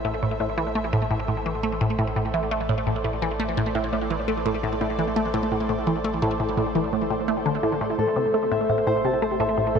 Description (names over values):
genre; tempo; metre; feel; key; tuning
ambient, sequencer-driven space music; 85 BPM; 4/4; straight; A minor; A4 = 440 Hz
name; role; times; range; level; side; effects
lush unison pad; sustained chords; 0.0-9.8 s; A3 to E5; -29 LUFS; equal; chorus, shimmer reverb
resonant blip pluck; riff; 0.0-9.8 s; A2 to A3; -24 LUFS; equal; phaser, cassette tape, tape echo
warm sub bass; bass; 0.0-9.8 s; A1; -35 LUFS; equal; none
concert harp; arpeggios; 8.0-9.8 s; A4 to A5; -23 LUFS; left 2 dB; auto-pan, tape echo
room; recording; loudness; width
wet huge ambient reverb, RT60 7.2 s; none; -22 LUFS; side -6 dB against mid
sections
0.0-9.8 A section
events
none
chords
0.0 Am